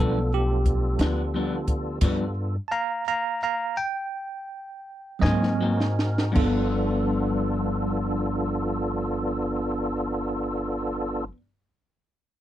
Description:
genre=slow blues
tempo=52-59 BPM (dotted quarters)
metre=12/8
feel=straight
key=G mixolydian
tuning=A4 = 439 Hz
part: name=bell-like tine electric piano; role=accompaniment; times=0.0-11.3 s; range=F3 to Bb5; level=-29 LUFS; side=right 2 dB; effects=medium stereo tremolo
part: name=electric guitar through a small old amp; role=accompaniment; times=0.0-11.4 s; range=G2 to D4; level=-29 LUFS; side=left 3 dB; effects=harmonic tremolo
part: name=tonewheel organ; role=sustained chords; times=0.0-11.3 s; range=B3 to Bb4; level=-29 LUFS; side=right 1 dB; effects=slow rotary speaker, overdrive, chorus vibrato
part: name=upright bass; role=bass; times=0.0-11.3 s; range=G1 to Ab2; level=-28 LUFS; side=equal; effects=none
part: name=compact cocktail drum kit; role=drums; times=0.7-6.5 s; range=crash cymbal, hi-hat, kick drum, snare drum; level=-25 LUFS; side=equal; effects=none
room=little or no reverb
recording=dry, close 1970s-style studio recording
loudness=-23 LUFS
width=side -12 dB against mid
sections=0.0-6.4 A section; 6.4-11.0 B section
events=tine electric piano solo 0.0-6.4; slowing down 0.7-6.4; stop 2.0-5.2; drum fill 5.2-6.4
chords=0.0 G7; 5.2 Ab9; 6.4 G7

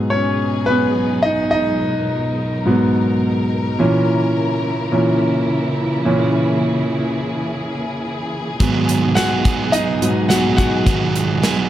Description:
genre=piano-driven pop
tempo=106 BPM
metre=4/4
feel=straight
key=G# minor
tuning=A4 = 441 Hz
part: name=clear concert grand piano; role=accompaniment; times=0.0-11.7 s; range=G#2 to F#5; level=-17 LUFS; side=equal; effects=none
part: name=warm studio string section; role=sustained chords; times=0.0-11.7 s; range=B2 to A#4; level=-23 LUFS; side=equal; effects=none
part: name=crunchy overdriven guitar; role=riff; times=8.6-11.7 s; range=G#2 to G#4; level=-19 LUFS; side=right 5 dB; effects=none
part: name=natural country drum kit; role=drums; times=8.6-11.6 s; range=hi-hat, kick drum, snare drum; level=-19 LUFS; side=equal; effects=none
room=moderate large studio reverb, RT60 0.9 s, small room ambience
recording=none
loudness=-15 LUFS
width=side -12 dB against mid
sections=0.0-11.7 A section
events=grand piano solo 0.0-11.7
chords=0.0 G#m7; 3.8 A#dim; 8.6 G#m7

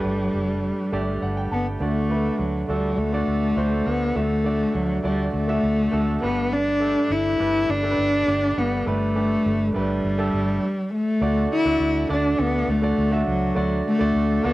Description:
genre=pop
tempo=102 BPM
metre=4/4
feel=straight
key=unclear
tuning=A4 = 435 Hz
part: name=warm cello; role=melody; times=0.0-14.5 s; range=F#3 to E4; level=-22 LUFS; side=left 1 dB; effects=cassette tape
part: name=clear concert grand piano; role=accompaniment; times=0.0-14.5 s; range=G2 to A5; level=-27 LUFS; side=right 2 dB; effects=none
part: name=vintage muted fingered electric bass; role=bass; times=0.0-14.5 s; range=F#1 to D2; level=-28 LUFS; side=equal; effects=none
room=light reverb, studio reverb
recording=home recording on cassette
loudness=-20 LUFS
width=side -17 dB against mid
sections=0.0-1.8 A section; 1.8-11.2 B section; 11.2-14.5 C section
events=grand piano fill 0.6-1.8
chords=0.0 Gadd9; 1.8 D; 6.2 Gadd9; 11.2 D

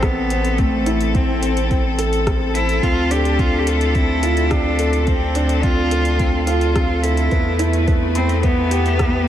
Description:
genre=piano and strings electronica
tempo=107 BPM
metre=4/4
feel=straight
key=D dorian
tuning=A4 = 440 Hz
part: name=rich cello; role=melody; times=0.0-9.3 s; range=A3 to G4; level=-22 LUFS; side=equal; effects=analog delay
part: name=clear symphonic string section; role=sustained chords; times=0.0-9.3 s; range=A3 to B4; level=-26 LUFS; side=left 4 dB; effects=sidechain pumping
part: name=felt-muted upright piano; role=riff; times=0.0-9.3 s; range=B3 to B5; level=-22 LUFS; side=right 1 dB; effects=analog delay
part: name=round analog bass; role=bass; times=0.0-9.3 s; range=A1 to E2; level=-20 LUFS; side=equal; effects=sidechain pumping
part: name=deep house drum kit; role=drums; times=0.0-9.1 s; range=hi-hat, rim click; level=-30 LUFS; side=left 1 dB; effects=overdrive
part: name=electronic kick drum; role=drums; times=0.0-9.1 s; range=none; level=-20 LUFS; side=equal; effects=none
room=moderate huge ambient reverb, RT60 7.9 s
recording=dreamy mix soaked in reverb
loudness=-15 LUFS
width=side -11 dB against mid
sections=0.0-9.3 A section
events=none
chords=0.0 Am; 2.8 Dm7; 7.3 Em

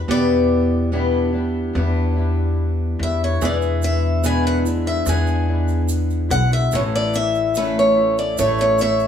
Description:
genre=acoustic folk duo or small band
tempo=72 BPM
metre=4/4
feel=straight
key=unclear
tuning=A4 = 441 Hz
part: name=fingerpicked twelve-string acoustic guitar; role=accompaniment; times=0.0-9.1 s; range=E2 to E4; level=-24 LUFS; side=left 6 dB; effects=none
part: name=picked steel-string acoustic guitar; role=arpeggios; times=0.0-9.1 s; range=E3 to A4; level=-24 LUFS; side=right 5 dB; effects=none
part: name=upright bass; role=bass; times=0.0-9.1 s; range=A1 to E2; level=-21 LUFS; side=equal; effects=none
part: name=picked swing-style acoustic guitar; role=melody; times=0.1-9.1 s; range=B4 to G#5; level=-20 LUFS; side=left 1 dB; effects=none
part: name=tube shaker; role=percussion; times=3.4-9.1 s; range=none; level=-34 LUFS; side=right 6 dB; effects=none
room=moderate stone room reverb, RT60 0.9 s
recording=band playing live in one room, small room ambience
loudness=-17 LUFS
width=side -8 dB against mid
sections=0.0-9.1 A section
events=steel-string acoustic guitar solo 0.0-9.1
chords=0.0 Em7; 3.4 E7; 6.7 A

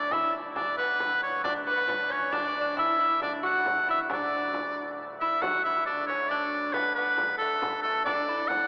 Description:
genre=medieval dance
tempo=91 BPM (dotted quarters)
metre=6/8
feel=straight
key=D major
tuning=A4 = 440 Hz
part: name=edgy shawm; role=melody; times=0.0-8.7 s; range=A4 to F#5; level=-28 LUFS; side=equal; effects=none
part: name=lute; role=second line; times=0.0-8.7 s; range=A3 to F#4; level=-36 LUFS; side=equal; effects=none
part: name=pipe organ, foundations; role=drone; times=0.0-8.7 s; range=D2 to A2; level=-49 LUFS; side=equal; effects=none
part: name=frame drum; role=percussion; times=0.1-8.7 s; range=none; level=-42 LUFS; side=equal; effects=none
room=wet cathedral reverb, RT60 4.8 s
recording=recorded in a church or concert hall, AM radio sound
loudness=-28 LUFS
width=mono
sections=0.0-5.4 A section; 5.4-8.7 B section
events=none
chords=none

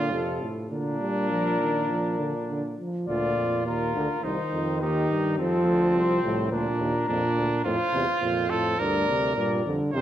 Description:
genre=classical, imitative canzona for brass ensemble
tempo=105 BPM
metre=4/4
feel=straight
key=Bb major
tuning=A4 = 439 Hz
part: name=clear trumpet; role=second line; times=0.0-10.0 s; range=C4 to C5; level=-29 LUFS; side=right 3 dB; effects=none
part: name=dark trombone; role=accompaniment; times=0.0-10.0 s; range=G2 to G3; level=-27 LUFS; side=right 1 dB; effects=none
part: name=warm bass trombone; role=bass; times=0.0-10.0 s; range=C2 to Bb2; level=-31 LUFS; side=right 2 dB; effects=none
part: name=dark cornet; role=melody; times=0.1-10.0 s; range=G4 to E5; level=-30 LUFS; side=left 6 dB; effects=none
room=wet recital hall reverb, RT60 1.5 s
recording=none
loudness=-23 LUFS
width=side -11 dB against mid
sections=0.0-3.1 A section; 3.1-10.0 B section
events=none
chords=0.1 F; 0.7 Bb; 3.1 Bb/D; 4.2 Cm; 5.4 F; 6.5 Bb/D; 7.7 F; 8.8 Gm/D

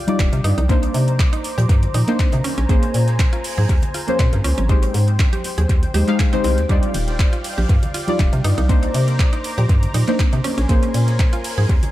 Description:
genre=deep house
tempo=120 BPM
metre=4/4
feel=swing 54% on 16ths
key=Eb major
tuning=A4 = 438 Hz
part: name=warm analog pad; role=sustained chords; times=0.0-11.9 s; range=Db4 to D6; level=-31 LUFS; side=left 1 dB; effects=chorus, sidechain pumping
part: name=mallet-like synth pluck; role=arpeggios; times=0.0-11.6 s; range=C4 to Ab4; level=-30 LUFS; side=right 3 dB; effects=chorus, sidechain pumping, dub echo
part: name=deep mellow chord stab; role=stabs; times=0.0-11.9 s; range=G3 to F5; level=-23 LUFS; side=left 1 dB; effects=chorus, sidechain pumping, dub echo
part: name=impact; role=sound effects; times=0.0-0.7 s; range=none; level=barely audible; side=none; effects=none
part: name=deep house drum kit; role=drums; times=0.1-11.9 s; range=handclaps, hi-hat, ride cymbal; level=-29 LUFS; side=equal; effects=studio reverb, dub echo
part: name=congas and bongos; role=percussion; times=0.1-11.9 s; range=none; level=-30 LUFS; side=right 2 dB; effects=sidechain pumping on perc, dub echo
part: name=hollow knocking FM bass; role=bass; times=0.2-11.8 s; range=Eb1 to C3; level=-18 LUFS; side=equal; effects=sidechain pumping
part: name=deep reggae drum kit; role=drums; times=0.2-11.9 s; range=hi-hat, shaker, snare drum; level=-40 LUFS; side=right 4 dB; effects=none
part: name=electronic kick drum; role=drums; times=0.2-11.8 s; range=none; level=-16 LUFS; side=equal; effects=studio reverb
room=light reverb, small room ambience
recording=echo-heavy mix, faint mains hum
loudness=-15 LUFS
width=side -15 dB against mid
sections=0.0-11.9 A section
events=impact 0.0-0.7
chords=0.0 Ebmaj9; 0.7 Cm9; 2.4 Bbm9; 4.7 Abmaj7; 6.7 Ebmaj9; 8.7 Cm9; 10.4 Bbm9

